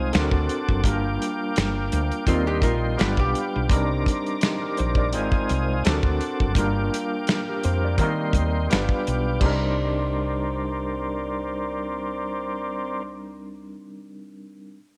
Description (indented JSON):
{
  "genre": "R&B, neo-soul",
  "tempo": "84 BPM",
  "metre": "4/4",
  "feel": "swing 55% on 16ths",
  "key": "C minor",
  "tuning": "A4 = 442 Hz",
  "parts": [
    { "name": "overdriven tine electric piano", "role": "accompaniment", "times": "0.0-14.8 s", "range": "G3 to D5", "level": "-30 LUFS", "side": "equal", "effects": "medium tremolo" },
    { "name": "tonewheel organ", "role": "sustained chords", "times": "0.0-13.0 s", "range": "C4 to Eb6", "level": "-32 LUFS", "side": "equal", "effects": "chorus vibrato, subtle chorus" },
    { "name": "woody fretless electric bass", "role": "bass", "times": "0.0-13.7 s", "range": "F#1 to Eb3", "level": "-28 LUFS", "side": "equal", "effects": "subtle chorus" },
    { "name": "warm soul drum kit", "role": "drums", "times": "0.1-9.6 s", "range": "crash cymbal, finger snaps, hi-hat, kick drum, snare drum", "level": "-26 LUFS", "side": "equal", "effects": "none" },
    { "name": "archtop guitar, miked and amplified", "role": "second line", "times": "2.3-3.7 s", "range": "C4 to D5", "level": "-30 LUFS", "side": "equal", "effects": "none" }
  ],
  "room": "light reverb, small room ambience",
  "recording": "none",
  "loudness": "-24 LUFS",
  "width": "mono",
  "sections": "0.0-9.4 A section; 9.4-12.3 B section",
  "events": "none",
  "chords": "0.1 D7b13; 0.8 Gm7; 2.3 Eb6; 3.0 G7; 3.7 Cm9; 5.1 Ab6; 5.8 D7b13; 6.6 Gm7; 8.0 Eb6; 8.7 G7; 9.4 Cm9"
}